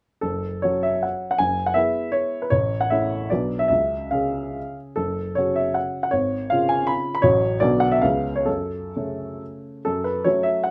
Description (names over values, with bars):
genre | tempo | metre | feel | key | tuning
classical, romantic triple-time dance for piano with dotted rhythms | 123-177 BPM | 3/4 | rubato | F# minor | A4 = 439 Hz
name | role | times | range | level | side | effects
warm baby grand piano | solo | 0.2-10.7 s | F#1 to B5 | -23 LUFS | equal | none
room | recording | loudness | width
moderate studio reverb, RT60 0.7 s | none | -22 LUFS | mono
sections
0.2-9.8 A section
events
none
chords
0.2 F#m; 1.4 E/F#; 2.5 A; 3.3 Bm; 3.7 C#; 5.0 F#m; 6.1 C#/G#; 7.2 F#m/A; 7.6 Bm; 8.0 C#7; 8.5 F#m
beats
| 0.23 0.63 1.03 | 1.40 1.76 2.15 | 2.52 2.90 3.30 | 3.70 4.12 4.56 | 4.98 5.37 5.76 | 6.13 6.52 6.89 | 7.24 7.61 8.03 | 8.47 8.94 9.41 | 9.85 10.25 10.64